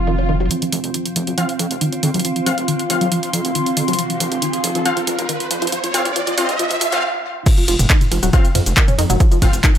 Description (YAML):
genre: driving peak-time techno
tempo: 138 BPM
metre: 4/4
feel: straight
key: unclear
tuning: A4 = 440 Hz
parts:
  - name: gritty driven synth bass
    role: bass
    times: 0.0-9.6 s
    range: Eb1 to F2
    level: -23 LUFS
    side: equal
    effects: sidechain pumping, high-pass filter
  - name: deep dark ambient pad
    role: drone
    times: 0.0-0.6, 8.1-9.8 s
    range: F3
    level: -32 LUFS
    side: right 1 dB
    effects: none
  - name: swell and riser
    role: sound effects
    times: 0.0-7.0 s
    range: none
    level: -25 LUFS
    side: right 2 dB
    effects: none
  - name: granular cloud pad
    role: texture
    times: 0.0-7.0 s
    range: C4 to C6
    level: -24 LUFS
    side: right 1 dB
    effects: built-in reverb, sidechain pumping
  - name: tight sequenced synth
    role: riff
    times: 0.1-9.7 s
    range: Eb3 to Db4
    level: -23 LUFS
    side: equal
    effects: chorus, phaser, tube saturation, sidechain pumping, ping-pong delay
  - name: punchy analog drum machine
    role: drums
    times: 0.1-9.8 s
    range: crash cymbal, handclaps, hi-hat, ride cymbal, shaker, toms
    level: -20 LUFS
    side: right 1 dB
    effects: overdrive, sidechain pumping on hats, high-pass filter on hats, low-pass filter on hats, sidechain pumping on perc, high-pass filter on perc, low-pass filter on perc, sidechain pumping on toms, high-pass filter on toms, low-pass filter on toms, sidechain pumping on cymbals, high-pass filter on cymbals, low-pass filter on cymbals, high-pass filter on snare, low-pass filter on snare
  - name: rave stab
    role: stabs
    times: 1.4-9.5 s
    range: C4 to F5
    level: -23 LUFS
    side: left 2 dB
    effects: chorus, built-in reverb, sidechain pumping, ping-pong delay
  - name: electronic kick drum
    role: drums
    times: 7.5-9.7 s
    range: none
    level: -14 LUFS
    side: equal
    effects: none
room: light reverb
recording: high-pass filter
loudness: -15 LUFS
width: side -10 dB against mid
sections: 0.5-7.5 A section; 7.5-9.8 B section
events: swell 0.0-0.5; build-up 0.5-7.5; riser 0.5-7.0; filter sweep on synth arpeggio sound 0.5-7.5; filter sweep on synth stab 0.5-7.5; stop 7.0-7.5; drop 7.5-9.8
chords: 0.0 F5